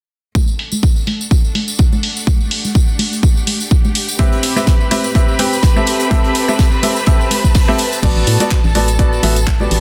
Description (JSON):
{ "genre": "piano house", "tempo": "125 BPM", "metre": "4/4", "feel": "swing 55% on 16ths", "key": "unclear", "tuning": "A4 = 440 Hz", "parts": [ { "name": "congas and tambourine", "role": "percussion", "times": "0.3-9.7 s", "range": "none", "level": "-26 LUFS", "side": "equal", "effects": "none" }, { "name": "electronic kick drum", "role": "drums", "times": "0.4-9.6 s", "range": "none", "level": "-15 LUFS", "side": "equal", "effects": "none" }, { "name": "bright studio string section", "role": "texture", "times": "0.4-9.8 s", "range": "A2 to A5", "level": "-29 LUFS", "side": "equal", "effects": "sidechain pumping" }, { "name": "house drum kit", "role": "drums", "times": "0.6-9.8 s", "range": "crash cymbal, handclaps, hi-hat", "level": "-22 LUFS", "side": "equal", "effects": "low-pass filter on hats, low-pass filter on cymbals, low-pass filter on snare, low-pass filter on room" }, { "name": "warm symphonic violin section", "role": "sustained chords", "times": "4.2-9.8 s", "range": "A4 to B5", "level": "-25 LUFS", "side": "equal", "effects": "sidechain pumping" }, { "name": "clear upright piano", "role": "riff", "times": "4.2-9.8 s", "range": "B3 to G5", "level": "-21 LUFS", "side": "equal", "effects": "sidechain pumping, tape echo" }, { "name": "modern studio drum kit", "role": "drums", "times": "4.2-8.0 s", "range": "hi-hat, snare drum", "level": "-30 LUFS", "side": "equal", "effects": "high-pass filter on hats, high-pass filter on snare, high-pass filter on room" }, { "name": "organ-like FM bass", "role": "bass", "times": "8.0-9.8 s", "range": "A1 to A2", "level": "-18 LUFS", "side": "equal", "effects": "sidechain pumping" } ], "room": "small room reverb", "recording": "dense, heavily limited modern master", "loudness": "-14 LUFS", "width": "mono", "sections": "0.4-8.0 A section; 8.0-9.8 B section", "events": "fade-in on string section 0.4-8.0", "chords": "0.4 D/A; 2.0 G5/A; 4.2 Cmaj7/A; 8.0 Bm7/A" }